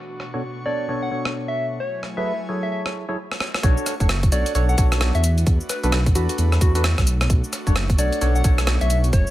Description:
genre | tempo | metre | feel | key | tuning
UK garage, two-step garage | 131 BPM | 4/4 | swing 61% on 16ths | B dorian | A4 = 441 Hz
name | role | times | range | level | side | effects
airy breathy pad | sustained chords | 0.0-9.3 s | B2 to C#6 | -35 LUFS | equal | chorus, sidechain pumping
breakbeat sampler-style drum kit | drums | 0.2-9.3 s | cabasa, hi-hat, rim click | -26 LUFS | equal | none
percussive organ stab | stabs | 0.3-9.1 s | B2 to C#5 | -28 LUFS | equal | lush chorus
soft struck synth lead | melody | 0.7-9.3 s | F#4 to F#5 | -28 LUFS | left 1 dB | chorus, tape echo
dark detuned saw bass | bass | 3.6-9.2 s | F#1 to E2 | -19 LUFS | equal | none
electronic kick drum | drums | 3.6-9.2 s | none | -18 LUFS | equal | none
room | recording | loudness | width
digital ambience | low-pass filter | -18 LUFS | side -15 dB against mid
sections
0.0-3.6 A section; 3.6-9.3 B section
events
filter sweep 0.0-3.6; drum fill 3.3-3.6; drop 3.6-9.3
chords
0.0 Bm7; 1.8 F#m7; 3.6 Bm7; 5.2 E7sus4; 7.1 Bm7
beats
0.43 0.89 1.34 | 1.80 2.26 2.72 3.18 | 3.63 4.09 4.55 5.01 | 5.47 5.92 6.38 6.84 | 7.30 7.76 8.21 8.67 | 9.13

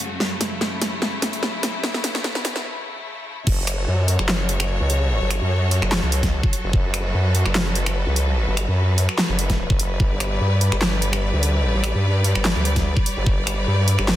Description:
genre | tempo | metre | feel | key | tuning
heavy wobble dubstep | 147 BPM | 4/4 | swing 54% on 16ths, half-time | F# phrygian | A4 = 437 Hz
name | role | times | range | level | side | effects
clear studio string section | sustained chords | 0.0-14.2 s | F#2 to D5 | -26 LUFS | left 1 dB | sidechain pumping
dubstep drum kit | drums | 0.0-14.2 s | crash cymbal, finger snaps, handclaps, hi-hat, snare drum | -24 LUFS | equal | overdrive
formant-sweep wobble bass | bass | 3.5-14.2 s | F#1 to G2 | -20 LUFS | equal | chorus, overdrive
electronic kick drum | drums | 3.5-3.6, 6.2-6.8, 9.5-10.1, 12.8-13.4 s | none | -20 LUFS | equal | overdrive
room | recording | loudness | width
light reverb | dense, heavily limited modern master, high-pass filter | -18 LUFS | side -13 dB against mid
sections
0.0-3.5 A section; 3.5-14.2 B section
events
build-up 0.0-3.5; drum fill 0.0-2.7; break 2.7-3.5; drop 3.5-14.2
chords
0.0 F#m; 10.0 G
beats
| 0.20 0.61 1.02 1.43 | 1.84 2.24 2.65 3.06 | 3.47 3.88 4.29 4.69 | 5.10 5.51 5.92 6.33 | 6.73 7.14 7.55 7.96 | 8.37 8.77 9.18 9.59 | 10.00 10.41 10.81 11.22 | 11.63 12.04 12.45 12.86 | 13.26 13.67 14.08

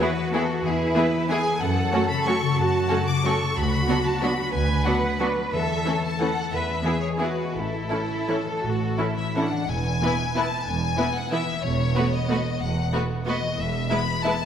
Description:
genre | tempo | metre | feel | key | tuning
classical, orchestral ballroom waltz | 157-202 BPM | 3/4 | rubato | A major, E major from 9.7 s | A4 = 440 Hz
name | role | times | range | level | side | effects
clear chamber violin section | melody | 0.0-14.5 s | G#4 to D6 | -29 LUFS | left 4 dB | none
clear symphonic violin section | second line | 0.0-14.3 s | C#4 to B4 | -30 LUFS | left 1 dB | none
clear symphonic viola section | accompaniment | 0.0-14.3 s | E3 to C#4 | -29 LUFS | right 2 dB | none
concert harp | arpeggios | 0.0-14.5 s | F#2 to B4 | -29 LUFS | left 6 dB | none
rich symphonic cello section | bass | 0.0-13.9 s | E2 to B4 | -28 LUFS | right 3 dB | none
clear studio double bass section | bass | 0.6-13.8 s | E1 to F#2 | -29 LUFS | right 3 dB | none
room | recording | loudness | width
wet scoring stage reverb, RT60 1.7 s | none | -21 LUFS | side -8 dB against mid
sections
0.0-9.7 A section; 9.7-14.5 B section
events
none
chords
0.0 E; 1.6 F#m; 3.6 Bm/D; 5.5 A/E; 6.5 E; 7.5 A; 9.7 E; 11.6 B7/E; 13.6 E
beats
0.00 0.33 | 0.64 0.96 1.29 | 1.61 1.92 2.26 | 2.58 2.90 3.24 | 3.56 3.88 4.22 | 4.54 4.86 5.20 | 5.53 5.86 6.20 | 6.52 6.84 7.19 | 7.54 7.91 8.28 | 8.62 8.98 9.35 | 9.69 10.01 10.35 | 10.66 10.98 11.32 | 11.63 11.95 12.29 | 12.61 12.93 13.27 | 13.58 13.91 14.25

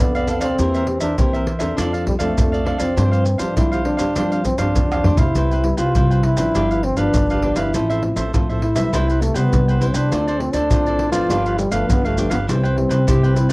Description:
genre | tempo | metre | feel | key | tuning
samba and choro | 101 BPM | 4/4 | straight | C major | A4 = 440 Hz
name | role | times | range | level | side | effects
warm trombone | melody | 0.0-13.5 s | G3 to F4 | -21 LUFS | equal | cassette tape
cavaquinho | accompaniment | 0.0-13.5 s | D4 to G5 | -26 LUFS | right 2 dB | cassette tape
nylon-string guitar | accompaniment | 0.0-13.5 s | G2 to A4 | -25 LUFS | left 2 dB | cassette tape
upright bass | bass | 0.0-13.5 s | G1 to G3 | -21 LUFS | equal | tube saturation
maracas, pandeiro, surdo and tamborim | percussion | 0.1-13.5 s | none | -21 LUFS | equal | none
warm clarinet | second line | 13.1-13.5 s | E4 to G4 | -23 LUFS | left 1 dB | cassette tape
room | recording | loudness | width
light reverb | home recording on cassette | -16 LUFS | side -24 dB against mid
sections
0.0-13.5 A section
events
drum fill 4.9-5.4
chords
0.0 F6; 0.6 C7/E; 1.8 F6; 3.0 G7sus4; 5.4 Cmaj7; 6.5 G7; 7.7 Fmaj7/A; 8.9 Cmaj7; 10.1 Dm7; 11.3 G7; 12.5 Cmaj7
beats
| 0.59 1.19 1.78 2.38 | 2.97 3.57 4.17 4.76 | 5.36 5.95 6.55 7.14 | 7.74 8.33 8.92 9.52 | 10.11 10.71 11.30 11.89 | 12.48 13.08

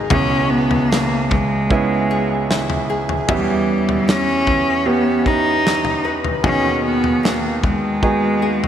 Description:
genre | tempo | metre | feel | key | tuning
pop ballad | 76 BPM | 4/4 | straight | unclear | A4 = 436 Hz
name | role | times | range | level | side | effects
clear concert grand piano | accompaniment | 0.0-8.7 s | C#2 to A#4 | -20 LUFS | right 4 dB | none
nylon-string guitar | arpeggios | 0.0-8.7 s | G#2 to B4 | -27 LUFS | left 4 dB | diffuse ambient delay
rich cello | melody | 0.1-8.7 s | G3 to D#4 | -18 LUFS | left 1 dB | diffuse ambient delay
modern studio drum kit | drums | 0.1-8.7 s | kick drum, snare drum, toms | -21 LUFS | left 1 dB | none
room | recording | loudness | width
moderate lush hall reverb, RT60 2.2 s | dreamy mix soaked in reverb | -15 LUFS | side -9 dB against mid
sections
0.0-8.7 A section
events
none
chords
0.1 C#m7; 3.3 Em6; 6.4 B6/D#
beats
| 0.11 0.91 1.71 2.50 | 3.29 4.08 4.86 5.65 | 6.44 7.24 8.03

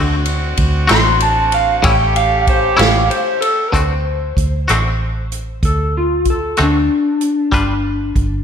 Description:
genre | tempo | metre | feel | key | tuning
slow blues | 63 BPM (dotted quarters) | 12/8 | straight | D mixolydian | A4 = 439 Hz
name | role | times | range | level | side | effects
electric slide guitar | melody | 0.0-8.4 s | D4 to C6 | -17 LUFS | left 1 dB | slapback echo
twangy electric guitar | accompaniment | 0.0-7.7 s | A2 to B4 | -19 LUFS | left 2 dB | tremolo, slapback echo
warm horn section | sustained chords | 0.0-3.7 s | A3 to G4 | -22 LUFS | right 3 dB | none
vintage muted fingered electric bass | bass | 0.0-8.4 s | G1 to D2 | -18 LUFS | right 1 dB | none
swinging big-band drum kit | drums | 0.3-8.3 s | hi-hat, kick drum, ride cymbal, rim click, snare drum | -19 LUFS | right 1 dB | none
room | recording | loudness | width
moderate scoring stage reverb, RT60 1.6 s, studio reverb | big arena sound | -13 LUFS | side -7 dB against mid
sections
0.0-3.7 A section; 3.7-8.4 B section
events
electric slide guitar solo 0.0-3.7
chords
0.0 D7; 1.8 A7; 3.7 D7; 7.5 G7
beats
0.90 1.84 2.79 | 3.73 4.68 5.63 6.58 | 7.53

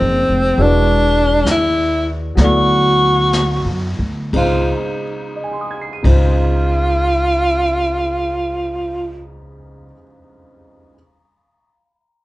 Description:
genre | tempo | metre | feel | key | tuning
jazz ballad | 58-71 BPM | 4/4 | swing 66% on 8ths | Db major | A4 = 435 Hz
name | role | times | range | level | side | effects
breathy tenor saxophone | melody | 0.0-9.2 s | C4 to F#4 | -16 LUFS | equal | none
warm grand piano | accompaniment | 0.0-11.0 s | Db3 to Eb7 | -23 LUFS | equal | none
upright bass | bass | 0.0-9.9 s | E1 to F#2 | -18 LUFS | equal | none
jazz brush drum kit | drums | 0.6-6.2 s | brushed snare drum, hi-hat, kick drum, ride cymbal, snare drum | -22 LUFS | left 1 dB | none
room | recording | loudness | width
light reverb | band playing live in one room, nothing above 10.5 kHz | -14 LUFS | side -18 dB against mid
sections
0.0-4.3 A section; 4.3-8.4 B section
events
slowing down 0.0-4.3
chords
0.0 Ab7; 0.6 E7; 2.4 D; 4.3 Dbmaj9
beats
| 0.58 1.46 2.37 3.33 | 4.33 5.37 6.39 7.41

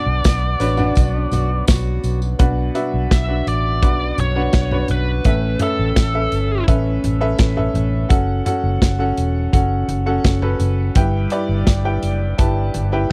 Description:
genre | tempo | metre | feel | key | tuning
piano-driven pop | 84 BPM | 4/4 | straight | B minor | A4 = 440 Hz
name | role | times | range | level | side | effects
biting lead guitar | melody | 0.0-6.7 s | A4 to E5 | -26 LUFS | equal | overdrive
clear upright piano | accompaniment | 0.0-13.1 s | G2 to A5 | -24 LUFS | equal | none
fingerpicked steel-string acoustic guitar | riff | 0.0-2.2 s | B3 to F#4 | -32 LUFS | equal | none
vintage muted fingered electric bass | bass | 0.1-13.0 s | E1 to B1 | -22 LUFS | equal | none
modern studio drum kit | drums | 0.2-12.9 s | hi-hat, kick drum, snare drum, toms | -21 LUFS | equal | none
tambourine | percussion | 0.2-2.4 s | none | -39 LUFS | equal | none
room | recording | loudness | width
small room ambience | dry, close 1970s-style studio recording | -18 LUFS | mono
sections
0.0-2.4 A section; 2.4-13.1 B section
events
none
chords
0.0 Bm; 5.3 Aadd9; 8.1 F#m; 11.0 Em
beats
0.25 0.96 1.68 | 2.39 3.11 3.82 4.54 | 5.25 5.96 6.68 7.39 | 8.11 8.82 9.54 10.25 | 10.96 11.68 12.39 13.11

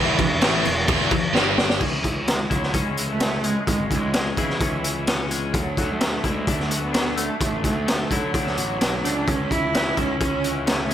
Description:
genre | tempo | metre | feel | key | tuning
quiet-loud alternative rock | 129 BPM | 4/4 | straight | unclear | A4 = 439 Hz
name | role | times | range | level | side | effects
clear cello | melody | 0.0-10.9 s | E3 to E4 | -27 LUFS | right 3 dB | none
scooped high-gain guitar | riff | 0.0-1.8 s | E2 to A3 | -25 LUFS | right 10 dB | distortion
thick fuzz guitar | riff | 0.0-1.8 s | E2 to A3 | -27 LUFS | left 12 dB | distortion
fuzz picked electric bass | bass | 0.0-10.9 s | E1 to D3 | -28 LUFS | equal | overdrive
raw garage drum kit | drums | 0.2-10.9 s | crash cymbal, hi-hat, kick drum, snare drum | -22 LUFS | equal | none
twelve-string electric guitar | arpeggios | 1.8-10.9 s | C#3 to E4 | -30 LUFS | left 6 dB | lush chorus, analog delay
room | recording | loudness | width
moderate lush hall reverb, RT60 1.9 s, small room ambience | big arena sound | -20 LUFS | side -10 dB against mid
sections
0.0-1.8 A section; 1.8-10.9 B section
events
drum fill 1.3-1.8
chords
0.0 N.C.; 1.8 C#m; 5.5 Dadd9; 9.3 C#m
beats
0.42 0.88 1.35 | 1.81 2.28 2.74 3.21 | 3.67 4.14 4.61 5.07 | 5.54 6.01 6.47 6.94 | 7.41 7.87 8.34 8.80 | 9.27 9.74 10.20 10.67

